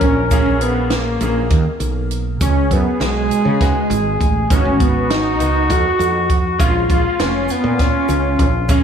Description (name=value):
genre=progressive instrumental, band music in an uneven meter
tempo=201 BPM (eighths)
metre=7/8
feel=straight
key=unclear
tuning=A4 = 440 Hz
part: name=wide unison lead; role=melody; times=0.0-8.8 s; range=G#3 to F#4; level=-19 LUFS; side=equal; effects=none
part: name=mellow flugelhorn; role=second line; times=0.0-8.8 s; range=E#4 to A#4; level=-22 LUFS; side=left 2 dB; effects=diffuse ambient delay
part: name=woody fretless electric bass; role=bass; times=0.0-8.8 s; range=E#1 to C#3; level=-19 LUFS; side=right 1 dB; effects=lush chorus
part: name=compact cocktail drum kit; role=drums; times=0.0-8.8 s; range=hi-hat, kick drum, snare drum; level=-19 LUFS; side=right 2 dB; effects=none
part: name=bright grand piano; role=accompaniment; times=0.3-8.8 s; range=G#3 to G#4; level=-29 LUFS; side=equal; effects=none
part: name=egg shaker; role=percussion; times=0.3-8.8 s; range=none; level=-40 LUFS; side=right 6 dB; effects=none
room=light reverb, studio ambience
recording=studio reverb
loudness=-14 LUFS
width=side -7 dB against mid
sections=0.0-8.8 A section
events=none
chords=0.0 C#13; 2.4 C#7sus4; 4.5 G#m9; 6.6 C#13/E#